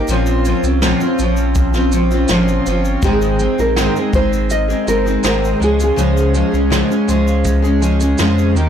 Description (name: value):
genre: acoustic pop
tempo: 82 BPM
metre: 4/4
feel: straight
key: unclear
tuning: A4 = 440 Hz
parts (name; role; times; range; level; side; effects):
- nylon-string guitar; melody; 0.0-7.2 s; Ab4 to Eb5; -20 LUFS; equal; plate reverb, ping-pong delay
- picked steel-string acoustic guitar; accompaniment; 0.0-8.7 s; Ab2 to Ab4; -16 LUFS; left 1 dB; double-tracked left and right, plate reverb
- electric guitar through a small old amp; arpeggios; 0.0-8.7 s; Eb3 to G4; -27 LUFS; right 7 dB; wide subtle chorus, plate reverb
- sub bass with octave; bass; 0.0-8.7 s; G1 to F2; -18 LUFS; equal; none
- jazz brush drum kit; drums; 0.1-8.7 s; kick drum, shaker, snare drum; -21 LUFS; equal; soft clipping on snare
- tube shaker; percussion; 0.1-8.5 s; none; -37 LUFS; left 6 dB; none
room: light reverb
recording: blown-out, overdriven recording, overdrive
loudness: -13 LUFS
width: side -8 dB against mid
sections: 0.0-8.7 A section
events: none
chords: 0.1 Bbmadd9; 3.0 Ab; 5.6 Db